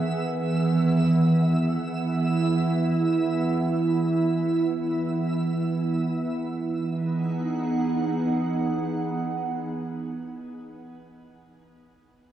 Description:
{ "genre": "ambient", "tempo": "free time", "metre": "none", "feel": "none", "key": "E major", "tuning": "A4 = 440 Hz", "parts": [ { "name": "glassy FM pad", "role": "sustained chords", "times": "0.0-10.7 s", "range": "D#3 to F#5", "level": "-23 LUFS", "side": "right 2 dB", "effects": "ensemble chorus, built-in reverb, shimmer reverb" }, { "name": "twinkling granular texture", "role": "texture", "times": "0.0-6.4 s", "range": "E5 to E6", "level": "-37 LUFS", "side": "left 1 dB", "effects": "built-in reverb, shimmer reverb" } ], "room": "wet concert hall reverb, RT60 2.0 s", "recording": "worn, warbling old tape, cassette tape, warbly pitch drift, studio reverb", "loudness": "-22 LUFS", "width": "side -11 dB against mid", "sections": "0.0-6.4 A section; 6.4-9.9 B section", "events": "none", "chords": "0.0 Emaj7", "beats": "free time" }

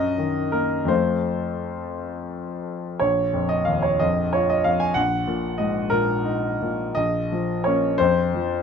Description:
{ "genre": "classical, romantic character piece for solo piano", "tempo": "54-66 BPM (dotted quarters)", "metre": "6/8", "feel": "rubato", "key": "Bb minor", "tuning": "A4 = 440 Hz", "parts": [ { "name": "clear concert grand piano", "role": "solo", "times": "0.0-8.6 s", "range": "Bb1 to Ab5", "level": "-20 LUFS", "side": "left 1 dB", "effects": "none" } ], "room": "moderate studio reverb, RT60 0.8 s", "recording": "minimal, uncompressed stereo recording", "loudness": "-20 LUFS", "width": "side -6 dB against mid", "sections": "0.0-8.6 A section", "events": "none", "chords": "0.0 Ebm/Gb; 0.9 F; 3.0 Bb5; 5.0 Ebm/Bb; 7.0 Bbm; 8.0 F5", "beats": "| 0.89 1.97 | 3.01 4.01 | 4.96 5.91 | 6.97 7.99" }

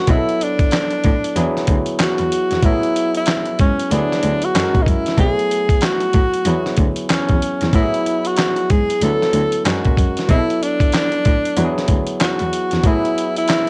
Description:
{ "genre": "R&B, neo-soul", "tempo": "94 BPM", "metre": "4/4", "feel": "swing 63% on 16ths", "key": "B dorian", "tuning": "A4 = 440 Hz", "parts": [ { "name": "breathy tenor saxophone", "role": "melody", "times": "0.0-13.7 s", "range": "C#4 to A4", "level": "-22 LUFS", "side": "equal", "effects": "cassette tape" }, { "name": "barky tine electric piano", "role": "accompaniment", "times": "0.0-13.7 s", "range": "F#3 to A#4", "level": "-26 LUFS", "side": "equal", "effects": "cassette tape" }, { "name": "warm cello", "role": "bass", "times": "0.1-12.9 s", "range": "D2 to B2", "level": "-24 LUFS", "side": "equal", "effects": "none" }, { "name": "dusty soul sampler-style drum kit", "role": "drums", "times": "0.1-13.7 s", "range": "handclaps, hi-hat, kick drum, snare drum", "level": "-21 LUFS", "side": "equal", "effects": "cassette tape" } ], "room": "light reverb", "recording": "home recording on cassette", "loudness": "-17 LUFS", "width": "mono", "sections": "0.0-13.7 A section", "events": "none", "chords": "0.1 Bm7; 1.4 E9; 2.6 Asus2 (rootless); 3.9 Dadd9; 4.5 F#7; 5.2 B5; 6.5 E69; 7.7 Asus2 (rootless); 9.0 Dadd9; 9.6 F#; 10.3 Bm7; 11.6 E9; 12.8 Asus2 (rootless)", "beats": "| 0.07 0.71 1.35 1.99 | 2.63 3.27 3.90 4.54 | 5.18 5.82 6.46 7.09 | 7.73 8.37 9.01 9.65 | 10.29 10.93 11.56 12.20 | 12.84 13.48" }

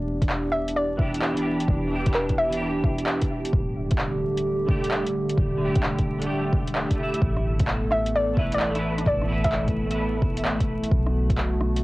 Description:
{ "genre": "future garage", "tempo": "130 BPM", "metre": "4/4", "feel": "swing 66% on 16ths", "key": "E minor", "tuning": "A4 = 437 Hz", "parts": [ { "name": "warbly tape-like pad", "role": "sustained chords", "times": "0.0-11.8 s", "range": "D3 to A4", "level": "-28 LUFS", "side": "right 1 dB", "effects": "chorus, built-in reverb, sidechain pumping, cassette tape" }, { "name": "soft 808-style bass", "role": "bass", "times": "0.0-11.8 s", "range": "D1 to B1", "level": "-30 LUFS", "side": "equal", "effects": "sidechain pumping" }, { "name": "deep house drum kit", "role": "drums", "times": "0.2-11.8 s", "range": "handclaps, hi-hat, rim click", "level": "-29 LUFS", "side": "equal", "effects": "overdrive, cassette tape" }, { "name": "electronic kick drum", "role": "drums", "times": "0.2-11.4 s", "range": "none", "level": "-26 LUFS", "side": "equal", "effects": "overdrive, cassette tape" }, { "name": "hollow square pluck", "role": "melody", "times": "0.5-3.0, 7.9-9.8 s", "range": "B4 to E5", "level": "-27 LUFS", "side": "left 1 dB", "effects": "chorus, analog delay" }, { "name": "clean electric guitar", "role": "accompaniment", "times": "1.0-10.9 s", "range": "D3 to E5", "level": "-31 LUFS", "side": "equal", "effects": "ensemble chorus, sidechain pumping, cassette tape, tape echo" } ], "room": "light reverb", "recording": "home recording on cassette, vinyl crackle", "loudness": "-22 LUFS", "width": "side -20 dB against mid", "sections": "0.0-11.8 A section", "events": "none", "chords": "0.0 Em7; 3.5 Dsus4; 7.2 Asus2; 10.9 Bm7", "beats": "0.29 0.76 1.22 | 1.68 2.14 2.60 3.06 | 3.53 3.99 4.45 4.91 | 5.37 5.83 6.29 6.76 | 7.22 7.68 8.14 8.60 | 9.06 9.53 9.99 10.45 | 10.91 11.37 11.83" }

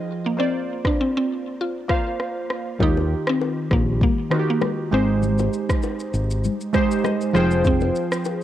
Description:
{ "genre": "afrobeats", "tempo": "99 BPM", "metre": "4/4", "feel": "swing 55% on 16ths", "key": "Eb major", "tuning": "A4 = 440 Hz", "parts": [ { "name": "mallet-like synth pluck", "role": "melody", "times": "0.0-8.4 s", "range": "Bb3 to F4", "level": "-25 LUFS", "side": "equal", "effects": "chorus, cassette tape, tape echo" }, { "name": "glassy digital keys", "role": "accompaniment", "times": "0.0-8.4 s", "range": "Eb3 to G5", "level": "-23 LUFS", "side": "right 2 dB", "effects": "chorus, cassette tape" }, { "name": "afro-pop drum kit", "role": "drums", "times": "0.8-8.4 s", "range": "kick drum, rim click, shaker", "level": "-24 LUFS", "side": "equal", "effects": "cassette tape" }, { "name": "fingered electric bass", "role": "bass", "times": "2.8-7.9 s", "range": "F1 to Eb2", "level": "-22 LUFS", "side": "equal", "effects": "none" }, { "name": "congas and bongos", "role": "percussion", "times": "2.8-8.4 s", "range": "none", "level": "-28 LUFS", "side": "left 7 dB", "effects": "none" } ], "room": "digital ambience", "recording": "home recording on cassette", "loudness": "-19 LUFS", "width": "side -12 dB against mid", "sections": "0.0-8.4 A section", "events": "synth keys fill 6.4-7.7", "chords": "0.4 Bbadd9; 2.8 Ebadd9; 4.9 Abmaj7; 7.3 Fm", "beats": "| 0.38 0.98 1.59 2.20 | 2.80 3.41 4.01 4.62 | 5.23 5.83 6.44 7.04 | 7.65 8.26" }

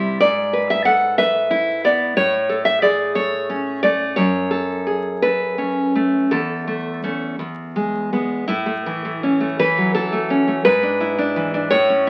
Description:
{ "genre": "romantic piece for solo classical guitar", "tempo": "54-62 BPM (dotted quarters)", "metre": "6/8", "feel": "rubato", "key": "A major", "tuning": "A4 = 440 Hz", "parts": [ { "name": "nylon-string guitar", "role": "solo", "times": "0.0-12.1 s", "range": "E2 to F#5", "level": "-19 LUFS", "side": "equal", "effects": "none" } ], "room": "moderate large studio reverb, RT60 0.8 s", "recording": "very old 78 rpm record, vinyl crackle", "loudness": "-19 LUFS", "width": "mono", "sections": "0.0-8.5 A section; 8.5-12.1 B section", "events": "none", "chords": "0.2 E/G#; 2.2 A; 4.2 F#m; 6.3 A/E; 7.4 E; 8.5 A; 10.7 E7/G#", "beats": "| 0.21 1.19 | 2.17 3.17 | 4.18 5.21 | 6.30 7.37 | 8.47 9.58 | 10.65 11.71" }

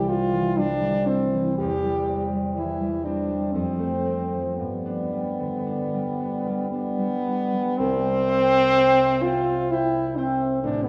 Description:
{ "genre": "classical, romantic duo for French horn and harp", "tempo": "55-66 BPM", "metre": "3/4", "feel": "rubato", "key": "C major", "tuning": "A4 = 445 Hz", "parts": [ { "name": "warm French horn", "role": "melody", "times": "0.0-10.9 s", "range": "B3 to G4", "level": "-26 LUFS", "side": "equal", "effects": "none" }, { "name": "concert harp", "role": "accompaniment", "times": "0.0-10.9 s", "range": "A1 to G5", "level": "-28 LUFS", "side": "equal", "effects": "none" } ], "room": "wet recital hall reverb, RT60 1.7 s", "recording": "heard from further back in the room", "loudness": "-24 LUFS", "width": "mono", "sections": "0.0-7.8 A section; 7.8-10.9 B section", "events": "none", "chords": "0.0 C; 1.6 C/E; 3.5 F; 4.6 G; 7.8 C", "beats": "0.56 | 1.58 2.55 3.53 | 4.58 5.66 6.72 | 7.78 8.75 9.71 | 10.62" }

